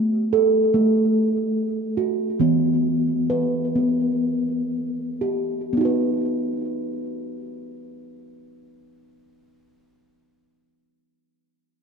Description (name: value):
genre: world meditative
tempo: 113-150 BPM (eighths)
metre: 7/8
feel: straight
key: unclear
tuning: A4 = 440 Hz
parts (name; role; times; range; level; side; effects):
- steel tongue drum; arpeggios; 0.0-9.4 s; E3 to B4; -20 LUFS; right 1 dB; ping-pong delay
room: wet recital hall reverb, RT60 1.5 s, small room ambience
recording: dark, warm production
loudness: -19 LUFS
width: side -6 dB against mid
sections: 0.0-5.7 A section; 5.7-9.4 B section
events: slowing down 0.0-5.7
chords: 0.0 F#m/A; 2.4 Em; 5.7 B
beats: 0.33 0.73 1.14 1.56 1.98 | 2.41 2.84 3.29 3.75 4.22 4.71 5.21 | 5.73 6.26 6.79 7.32 7.85 8.38 8.90